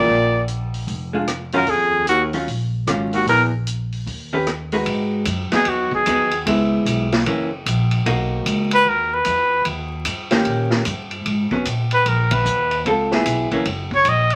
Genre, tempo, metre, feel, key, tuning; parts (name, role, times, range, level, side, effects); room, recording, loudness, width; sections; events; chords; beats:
jazz, small-group swing and bop; 150 BPM; 4/4; swing 64% on 8ths; Eb minor, G# minor from 4.9 s; A4 = 440 Hz
clear trumpet; melody; 0.0-14.4 s; Gb4 to D#5; -19 LUFS; equal
clear baritone saxophone; second line; 0.0-3.5 s; Eb2 to Bb2; -25 LUFS; equal
vintage hollow-body jazz guitar; accompaniment; 0.0-13.7 s; Eb3 to B4; -24 LUFS; equal
upright bass; bass; 0.0-14.4 s; F1 to A#2; -26 LUFS; equal
vintage drum kit; drums; 0.5-14.4 s; hi-hat, kick drum, ride cymbal, rim click, snare drum; -28 LUFS; equal
moderate studio reverb, RT60 0.8 s; vinyl crackle; -20 LUFS; mono
0.0-4.9 A section; 4.9-14.4 B section
band accent 12.3
0.1 Bb; 1.7 Ebm9; 3.3 N.C.; 4.1 Eb7alt; 4.9 G#m7; 6.5 C#m7; 7.3 F#7; 8.1 Bmaj7; 9.7 D#7; 11.3 G#madd9; 12.9 C#m7; 13.7 F#
| 0.08 0.48 0.88 1.27 | 1.67 2.07 2.47 2.87 | 3.27 3.67 4.06 4.46 | 4.86 5.26 5.66 6.06 | 6.46 6.86 7.26 7.66 | 8.06 8.46 8.86 9.26 | 9.66 10.06 10.46 10.86 | 11.26 11.66 12.06 12.46 | 12.86 13.26 13.66 14.06